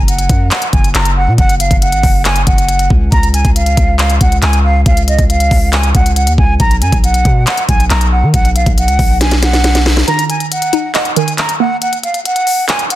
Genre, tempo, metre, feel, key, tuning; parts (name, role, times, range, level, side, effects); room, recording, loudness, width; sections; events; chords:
hip hop, trap; 138 BPM; 4/4; half-time; A4 = 437 Hz
breathy concert flute; melody; 0.0-13.0 s; Eb5 to Bb5; -16 LUFS; right 1 dB; low-pass filter, digital delay
long sustained 808-style bass; bass; 0.0-10.0 s; Gb1 to Eb3; -12 LUFS; equal
trap drum kit; drums; 0.1-13.0 s; handclaps, hi-hat, kick drum, snare drum; -13 LUFS; equal
glassy wavetable pluck; accompaniment; 10.1-11.8 s; Eb3 to Eb5; -16 LUFS; right 3 dB; chorus, low-pass filter
little or no reverb; dense, heavily limited modern master; -9 LUFS; side -14 dB against mid
0.0-13.0 A section
drum fill 9.2-10.1; break 10.1-13.0
0.0 N.C.; 3.1 Db; 6.6 B5; 10.1 Ebm